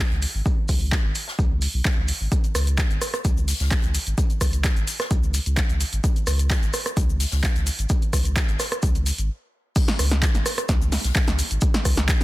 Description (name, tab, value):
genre	acid house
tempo	129 BPM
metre	4/4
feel	straight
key	unclear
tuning	A4 = 441 Hz
part	saturated sub bass	bass	0.0-12.2 s	G#1 to C#2	-23 LUFS	equal	tube saturation, sidechain pumping
part	swinging big-band drum kit	drums	0.1-12.2 s	hi-hat, shaker, snare drum	-37 LUFS	left 2 dB	sidechain pumping on hats, high-pass filter on hats, high-pass filter on snare, sidechain pumping on perc, high-pass filter on perc, high-pass filter on room
part	punchy analog drum machine	drums	0.2-12.2 s	crash cymbal, handclaps, hi-hat, rim click, shaker, snare drum	-26 LUFS	equal	none
part	electronic kick drum	drums	0.5-12.2 s	none	-21 LUFS	equal	overdrive
room	little or no reverb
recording	dense, heavily limited modern master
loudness	-20 LUFS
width	side -18 dB against mid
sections	0.0-9.8 A section; 9.8-12.2 B section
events	stop 9.3-9.8; drop 9.8-12.2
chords	none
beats	| 0.46 0.92 1.39 1.85 | 2.32 2.78 3.25 3.71 | 4.18 4.64 5.11 5.57 | 6.04 6.50 6.97 7.43 | 7.90 8.36 8.83 9.29 | 9.76 10.22 10.69 11.15 | 11.62 12.09